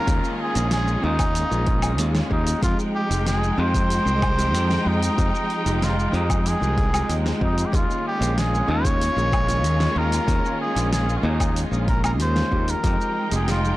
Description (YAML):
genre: sunset chillout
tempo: 94 BPM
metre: 4/4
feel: straight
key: unclear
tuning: A4 = 440 Hz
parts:
  - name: trumpet with cup mute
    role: melody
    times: 0.0-13.8 s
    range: Eb4 to Db5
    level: -26 LUFS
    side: equal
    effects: tape echo
  - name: vintage hollow-body jazz guitar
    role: accompaniment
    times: 0.0-13.6 s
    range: Ab3 to Ab4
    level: -30 LUFS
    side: left 1 dB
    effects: auto-pan, tape echo
  - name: warm symphonic string section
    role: sustained chords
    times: 0.0-13.8 s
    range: Eb3 to G5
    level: -27 LUFS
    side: equal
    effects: none
  - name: downlifter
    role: sound effects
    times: 0.0-2.6 s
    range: none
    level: -41 LUFS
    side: left 1 dB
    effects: none
  - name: modern bright fingered electric bass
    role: bass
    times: 0.1-13.7 s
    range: F1 to F2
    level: -23 LUFS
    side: equal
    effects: none
  - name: deep house drum kit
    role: drums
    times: 0.1-13.8 s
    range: hi-hat, shaker, snare drum, woodblock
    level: -29 LUFS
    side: equal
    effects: none
  - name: electronic kick drum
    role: drums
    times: 0.1-13.0 s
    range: none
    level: -24 LUFS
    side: equal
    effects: none
room: little or no reverb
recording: dry, gritty hardware recording, transformer saturation, cassette tape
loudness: -19 LUFS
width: side -17 dB against mid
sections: 0.0-13.8 A section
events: none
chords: 0.0 Eb9sus4; 2.6 Fm9; 7.7 Eb9sus4; 12.8 Fm9